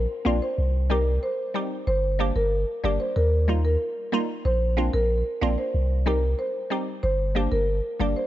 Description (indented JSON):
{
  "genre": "dancehall",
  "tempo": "93 BPM",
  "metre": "4/4",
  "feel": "straight",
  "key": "C minor",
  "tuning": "A4 = 440 Hz",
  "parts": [
    { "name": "punchy sub bass", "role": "bass", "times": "0.0-8.1 s", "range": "G1 to Eb2", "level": "-23 LUFS", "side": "equal", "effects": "none" },
    { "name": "glassy wavetable pluck", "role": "accompaniment", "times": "0.2-8.1 s", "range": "G3 to G4", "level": "-29 LUFS", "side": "equal", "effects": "chorus" },
    { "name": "marimba with medium mallets", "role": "melody", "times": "0.3-8.3 s", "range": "Bb4 to D5", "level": "-27 LUFS", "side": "equal", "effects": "none" }
  ],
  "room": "light reverb",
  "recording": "nothing above 7.8 kHz",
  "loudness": "-22 LUFS",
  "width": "side -14 dB against mid",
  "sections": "0.0-8.3 A section",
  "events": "none",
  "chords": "0.0 Bbadd9; 0.6 Cm; 1.9 Gm; 3.2 Ebadd9; 4.5 Bbadd9; 5.7 Cm; 7.0 Gm"
}